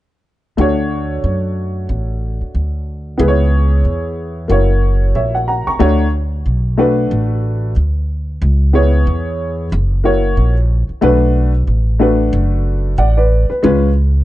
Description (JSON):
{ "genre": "hip hop, jazz-hop", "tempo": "92 BPM", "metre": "4/4", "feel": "swing 59% on 16ths", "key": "D major", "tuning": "A4 = 441 Hz", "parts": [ { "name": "dark upright piano", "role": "accompaniment", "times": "0.6-13.9 s", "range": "G#3 to C#6", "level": "-16 LUFS", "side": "left 1 dB", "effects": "plate reverb" }, { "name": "upright bass", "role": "bass", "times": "0.6-14.2 s", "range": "F#1 to F#2", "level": "-14 LUFS", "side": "equal", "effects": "none" } ], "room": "light reverb", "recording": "nothing above 10.4 kHz", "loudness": "-13 LUFS", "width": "side -15 dB against mid", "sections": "0.6-5.8 A section; 5.8-14.2 B section", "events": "none", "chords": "0.6 Dmaj7; 3.2 C#m7; 4.5 F#7; 5.8 Dmaj7; 8.4 C#m7; 9.7 F#7; 11.0 Bm7; 13.6 C#7" }